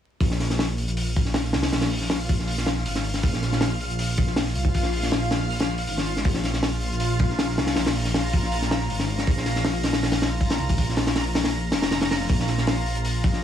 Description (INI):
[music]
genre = drum and bass, jungle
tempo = 159 BPM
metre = 4/4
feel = straight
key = unclear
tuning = A4 = 440 Hz
[part]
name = detuned saw bass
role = bass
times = 0.2-13.4 s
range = F1 to C2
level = -26 LUFS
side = equal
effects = none
[part]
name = crunchy breakbeat drum kit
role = drums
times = 0.2-13.4 s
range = hi-hat, kick drum, snare drum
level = -24 LUFS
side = left 1 dB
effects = none
[part]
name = backwards swelling texture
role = texture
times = 0.2-13.4 s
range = F4 to Bb5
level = -31 LUFS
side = right 1 dB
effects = built-in reverb
[sound]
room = light reverb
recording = vinyl crackle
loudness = -21 LUFS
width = side -10 dB against mid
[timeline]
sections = 0.2-13.4 A section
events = kick drops out 11.5-12.3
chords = 0.2 Bb5